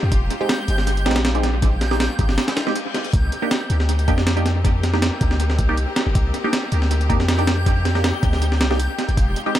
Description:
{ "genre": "drum and bass, jungle", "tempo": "159 BPM", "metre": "4/4", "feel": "swing 53% on 16ths", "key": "C minor", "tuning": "A4 = 441 Hz", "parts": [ { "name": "clear studio string section", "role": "sustained chords", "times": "0.0-9.6 s", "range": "Ab3 to G4", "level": "-30 LUFS", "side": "left 3 dB", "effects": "none" }, { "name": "long sustained 808-style bass", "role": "bass", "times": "0.0-9.3 s", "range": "F1 to F2", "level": "-20 LUFS", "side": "equal", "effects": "tube saturation" }, { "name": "backwards swelling texture", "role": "texture", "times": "0.0-9.6 s", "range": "G6", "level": "-32 LUFS", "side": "right 1 dB", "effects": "built-in reverb" }, { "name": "breakbeat sampler-style drum kit", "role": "drums", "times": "0.1-9.6 s", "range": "hi-hat, kick drum, snare drum", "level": "-21 LUFS", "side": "equal", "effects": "analog delay" }, { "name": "filtered dub chord stab", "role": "stabs", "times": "0.4-9.5 s", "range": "Ab3 to G4", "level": "-26 LUFS", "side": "right 2 dB", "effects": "phaser, dub echo" }, { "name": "reverse cymbal", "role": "sound effects", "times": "2.7-3.1 s", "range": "none", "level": "-34 LUFS", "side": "left 6 dB", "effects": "none" } ], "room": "light reverb", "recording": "echo-heavy mix", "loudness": "-17 LUFS", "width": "side -12 dB against mid", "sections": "0.0-9.6 A section", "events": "break 2.4-3.1; reverse cymbal 2.7-3.1", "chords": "0.0 Fm9; 3.1 Cm7", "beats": "| 0.12 0.49 0.87 1.25 | 1.63 2.00 2.38 2.76 | 3.14 3.51 3.89 4.27 | 4.64 5.02 5.40 5.78 | 6.16 6.53 6.91 7.29 | 7.66 8.04 8.42 8.80 | 9.17 9.55" }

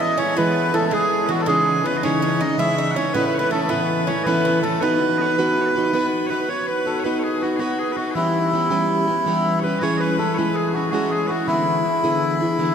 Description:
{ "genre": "celtic folk, Celtic slip jig", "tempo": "108 BPM (dotted quarters)", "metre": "9/8", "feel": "straight", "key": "B mixolydian", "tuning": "A4 = 442 Hz", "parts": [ { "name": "melodica", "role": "melody", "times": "0.0-12.7 s", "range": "E4 to E5", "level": "-22 LUFS", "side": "equal", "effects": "none" }, { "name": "Irish bouzouki", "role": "second line", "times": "0.0-6.1 s", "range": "F#3 to E4", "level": "-29 LUFS", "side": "right 4 dB", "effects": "none" }, { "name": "loud bright bagpipes", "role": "second line", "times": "0.0-12.7 s", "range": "E4 to F#5", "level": "-28 LUFS", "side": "left 5 dB", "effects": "none" }, { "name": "picked plugged-in steel-string acoustic guitar", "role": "accompaniment", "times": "0.0-12.7 s", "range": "A2 to B4", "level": "-21 LUFS", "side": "right 1 dB", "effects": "none" } ], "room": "wet cathedral reverb, RT60 7.2 s", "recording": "recorded in a church or concert hall", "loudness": "-18 LUFS", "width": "side -7 dB against mid", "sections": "0.0-6.5 A section; 6.5-12.7 B section", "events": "none", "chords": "0.0 E; 1.5 C#madd9; 3.1 A; 4.8 B; 8.2 Em6; 9.8 C#m/E; 11.5 E7", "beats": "0.36 0.92 | 1.47 2.03 2.59 | 3.14 3.70 4.26 | 4.81 5.37 5.93 | 6.48 7.04 7.60 | 8.15 8.71 9.27 | 9.82 10.38 10.93 | 11.49 12.04 12.60" }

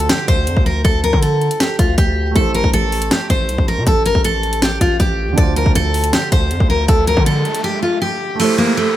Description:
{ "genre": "hip hop, trap", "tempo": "159 BPM", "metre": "4/4", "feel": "half-time", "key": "unclear", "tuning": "A4 = 440 Hz", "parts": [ { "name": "picked steel-string acoustic guitar", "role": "melody", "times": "0.0-9.0 s", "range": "A3 to D5", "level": "-17 LUFS", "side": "equal", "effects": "tape echo" }, { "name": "felt-muted upright piano", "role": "accompaniment", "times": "0.0-9.0 s", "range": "D3 to C5", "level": "-26 LUFS", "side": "right 6 dB", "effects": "none" }, { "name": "distorted 808-style bass", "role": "bass", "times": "0.0-7.4 s", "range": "A1 to D3", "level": "-19 LUFS", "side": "equal", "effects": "distortion" }, { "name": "trap drum kit", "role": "drums", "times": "0.0-7.6 s", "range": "hi-hat, kick drum, snare drum", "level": "-16 LUFS", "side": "equal", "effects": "none" }, { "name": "riser and downlifter", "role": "sound effects", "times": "6.8-9.0 s", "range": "none", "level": "-25 LUFS", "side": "equal", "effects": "none" } ], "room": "light reverb", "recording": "none", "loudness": "-13 LUFS", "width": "side -13 dB against mid", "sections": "0.0-8.4 A section", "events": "riser 6.8-8.4; break 7.6-8.4", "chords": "0.0 Dm7; 2.4 Am7; 5.4 Dm7; 8.4 Am7", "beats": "0.09 0.47 | 0.85 1.23 1.60 1.98 | 2.36 2.73 3.11 3.49 | 3.87 4.25 4.62 5.00 | 5.38 5.75 6.13 6.51 | 6.89 7.26 7.64 8.02 | 8.40 8.77" }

